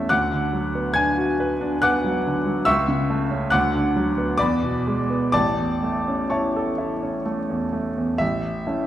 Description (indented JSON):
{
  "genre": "classical, romantic nocturne for solo piano",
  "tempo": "60-72 BPM",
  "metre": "3/4",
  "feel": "rubato",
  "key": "A major",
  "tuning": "A4 = 440 Hz",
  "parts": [
    { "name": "clear baby grand piano", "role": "solo", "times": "0.0-8.9 s", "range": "A1 to G#6", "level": "-20 LUFS", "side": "equal", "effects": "none" }
  ],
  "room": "wet recital hall reverb, RT60 1.5 s",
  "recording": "none",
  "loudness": "-20 LUFS",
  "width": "side -12 dB against mid",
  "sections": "0.0-8.2 A section",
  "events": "none",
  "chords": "0.1 Bm/D; 2.7 A/C#; 3.5 Bm/D; 4.4 E7; 5.3 A",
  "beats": "| 0.11 0.97 1.83 | 2.67 3.53 4.40 | 5.33 6.32 7.25 | 8.21"
}